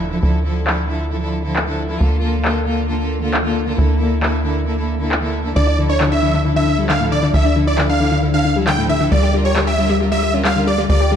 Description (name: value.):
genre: uplifting trance.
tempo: 135 BPM.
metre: 4/4.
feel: straight.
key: D minor.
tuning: A4 = 440 Hz.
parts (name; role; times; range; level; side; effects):
clear symphonic string section; sustained chords; 0.0-11.2 s; D3 to Bb4; -22 LUFS; equal; none.
tight sequencer bass; bass; 0.0-11.2 s; D2; -19 LUFS; equal; none.
electronic handclaps; drums; 0.7-10.5 s; none; -23 LUFS; equal; overdrive, low-pass filter on hats, studio reverb, low-pass filter on snare.
supersaw chords; melody; 5.6-11.1 s; C#5 to G5; -19 LUFS; right 2 dB; tape echo.
analog pluck; arpeggios; 5.6-11.2 s; A2 to G4; -18 LUFS; left 4 dB; chorus, tape echo.
room: moderate lush hall reverb, RT60 1.9 s.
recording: dark, warm production.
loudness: -15 LUFS.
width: side -8 dB against mid.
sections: 0.0-11.2 A section.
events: none.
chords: 0.0 Dmadd9; 2.0 Bbmaj7/D; 5.6 Dmadd9; 9.1 Gm7/D.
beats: | 0.23 0.67 1.12 1.56 | 2.00 2.45 2.89 3.34 | 3.78 4.23 4.67 5.12 | 5.56 6.00 6.45 6.89 | 7.34 7.78 8.23 8.67 | 9.12 9.56 10.01 10.45 | 10.89.